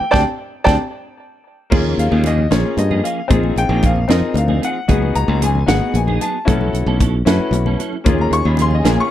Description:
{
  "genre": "electric jazz fusion",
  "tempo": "76 BPM (dotted quarters)",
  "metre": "6/8",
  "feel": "straight",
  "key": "unclear",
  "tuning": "A4 = 437 Hz",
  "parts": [
    { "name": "bright baby grand piano", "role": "melody", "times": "0.0-0.7 s", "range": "D5 to A5", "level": "-17 LUFS", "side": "right 2 dB", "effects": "plate reverb" },
    { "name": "clean electric guitar", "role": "stabs", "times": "0.0-9.1 s", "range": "F3 to A4", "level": "-25 LUFS", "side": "right 6 dB", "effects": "ensemble chorus, plate reverb" },
    { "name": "modern bright fingered electric bass", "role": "bass", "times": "0.0-9.0 s", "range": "Ab1 to G2", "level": "-17 LUFS", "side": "right 1 dB", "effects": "none" },
    { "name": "bright baby grand piano", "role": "accompaniment", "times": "0.1-9.1 s", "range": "Bb3 to Db6", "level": "-20 LUFS", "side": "left 5 dB", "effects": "plate reverb" },
    { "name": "tight funk drum kit", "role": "drums", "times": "0.1-9.0 s", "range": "crash cymbal, hi-hat, kick drum, snare drum", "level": "-19 LUFS", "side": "right 1 dB", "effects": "none" },
    { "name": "congas", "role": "percussion", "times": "0.1-9.0 s", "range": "none", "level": "-24 LUFS", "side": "left 7 dB", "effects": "none" },
    { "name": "dark studio string section", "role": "sustained chords", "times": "8.0-9.1 s", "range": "Eb3 to Ab4", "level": "-26 LUFS", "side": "right 1 dB", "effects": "plate reverb" }
  ],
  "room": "light reverb",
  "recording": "dark, warm production",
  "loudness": "-14 LUFS",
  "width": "side -12 dB against mid",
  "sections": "0.0-1.7 A section; 1.7-9.1 B section",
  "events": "band accent 0.1-1.7; drum fill 1.5",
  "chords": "0.0 D7sus4; 1.7 Eb9sus4; 3.3 Bb9sus4; 4.9 Db9sus4; 6.5 B9sus4; 8.1 Eb9sus4"
}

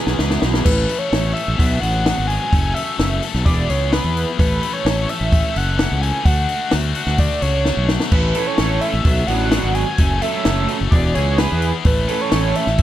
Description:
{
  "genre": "indie rock",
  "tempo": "128 BPM",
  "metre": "4/4",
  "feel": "straight",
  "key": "A major",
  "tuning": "A4 = 440 Hz",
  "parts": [
    { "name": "high-gain distorted guitar", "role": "riff", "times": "0.0-12.8 s", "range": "E3 to A4", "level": "-24 LUFS", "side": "left 9 dB", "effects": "distortion" },
    { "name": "overdriven electric guitar", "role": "riff", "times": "0.0-0.6, 8.4-12.6 s", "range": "E3 to A4", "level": "-24 LUFS", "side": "right 9 dB", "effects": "lush chorus, analog delay" },
    { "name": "fuzz fingered electric bass", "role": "bass", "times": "0.1-12.8 s", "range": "E1 to E2", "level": "-20 LUFS", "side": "equal", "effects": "overdrive" },
    { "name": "compact cocktail drum kit", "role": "drums", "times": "0.1-12.8 s", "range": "crash cymbal, hi-hat, kick drum, snare drum", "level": "-19 LUFS", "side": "equal", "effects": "none" },
    { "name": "overdriven synth lead", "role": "melody", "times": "0.6-12.8 s", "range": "B4 to G#5", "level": "-23 LUFS", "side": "right 1 dB", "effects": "distortion, analog delay" }
  ],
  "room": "little or no reverb",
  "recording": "dark, warm production",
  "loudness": "-15 LUFS",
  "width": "side -13 dB against mid",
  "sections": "0.7-12.8 A section",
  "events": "drum fill 0.0-0.7, 7.7-8.1",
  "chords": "0.0 E; 0.7 A; 1.6 Bm7; 2.5 F#m; 3.5 E; 4.4 A; 6.3 Dmaj7; 8.1 A; 9.1 Bm7; 10.0 F#m; 10.9 E; 11.9 A"
}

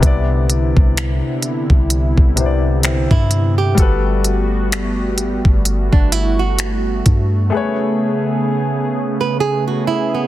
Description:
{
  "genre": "contemporary R&B",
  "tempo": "64 BPM",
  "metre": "4/4",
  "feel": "swing 58% on 16ths",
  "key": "unclear",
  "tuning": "A4 = 440 Hz",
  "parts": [
    { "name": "warm baby grand piano", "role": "accompaniment", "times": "0.0-10.3 s", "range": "C3 to D5", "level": "-22 LUFS", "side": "left 5 dB", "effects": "none" },
    { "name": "warm analog pad", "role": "sustained chords", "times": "0.0-10.3 s", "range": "C3 to G#4", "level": "-21 LUFS", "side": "right 1 dB", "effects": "lush chorus, sidechain pumping" },
    { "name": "soft 808-style bass", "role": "bass", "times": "0.0-7.5 s", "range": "G1 to G2", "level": "-17 LUFS", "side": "equal", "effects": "none" },
    { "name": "smooth R&B drum kit", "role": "drums", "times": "0.0-7.3 s", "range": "finger snaps, hi-hat, kick drum", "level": "-14 LUFS", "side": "equal", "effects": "soft clipping on snare" },
    { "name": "flamenco guitar", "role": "arpeggios", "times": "2.8-10.3 s", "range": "B3 to B4", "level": "-21 LUFS", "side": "right 6 dB", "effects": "none" }
  ],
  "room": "digital ambience",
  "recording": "dense, heavily limited modern master",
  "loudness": "-14 LUFS",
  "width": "side -14 dB against mid",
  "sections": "0.0-10.3 A section",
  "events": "none",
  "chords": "0.0 Cmaj9; 3.8 Gmaj9; 7.5 Amaj9"
}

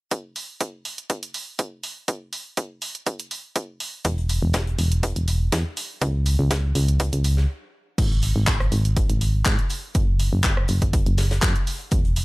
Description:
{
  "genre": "piano house",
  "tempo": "122 BPM",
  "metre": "4/4",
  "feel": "swing 53% on 16ths",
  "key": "unclear",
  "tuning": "A4 = 440 Hz",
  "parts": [
    { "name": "electronic kick drum", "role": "drums", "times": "0.1-12.0 s", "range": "none", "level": "-23 LUFS", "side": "equal", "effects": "overdrive, high-pass filter on kick" },
    { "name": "house drum kit", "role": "drums", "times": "0.1-12.2 s", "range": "crash cymbal, handclaps, hi-hat, rim click", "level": "-28 LUFS", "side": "right 1 dB", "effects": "none" },
    { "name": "solid FM bass", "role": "bass", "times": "4.0-12.2 s", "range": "E1 to G#2", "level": "-21 LUFS", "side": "equal", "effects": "sidechain pumping" },
    { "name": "big rock drum kit", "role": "drums", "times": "4.0-12.2 s", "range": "hi-hat, snare drum", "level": "-36 LUFS", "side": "left 2 dB", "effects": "high-pass filter on hats, high-pass filter on snare, high-pass filter on room" }
  ],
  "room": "little or no reverb",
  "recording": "none",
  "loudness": "-21 LUFS",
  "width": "side -22 dB against mid",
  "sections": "0.1-8.0 A section; 8.0-12.2 B section",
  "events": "stop 7.5-8.0",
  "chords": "none"
}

